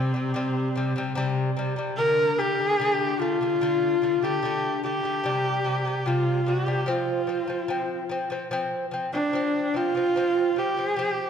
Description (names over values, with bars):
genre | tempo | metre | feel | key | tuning
mongolian traditional, Mongolian folk | 73 BPM | 4/4 | straight | F zhi mode | A4 = 440 Hz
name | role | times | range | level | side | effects
bright horsehead fiddle | melody | 0.0-11.3 s | C4 to Bb4 | -24 LUFS | equal | none
lute | arpeggios | 0.0-11.3 s | C3 to C4 | -28 LUFS | left 2 dB | none
room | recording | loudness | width
wet concert hall reverb, RT60 2.0 s | dark, warm production | -23 LUFS | side -7 dB against mid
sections
0.0-8.5 A section; 8.5-11.3 B section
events
none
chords
0.0 C5; 2.0 D5; 5.3 C5; 6.9 F5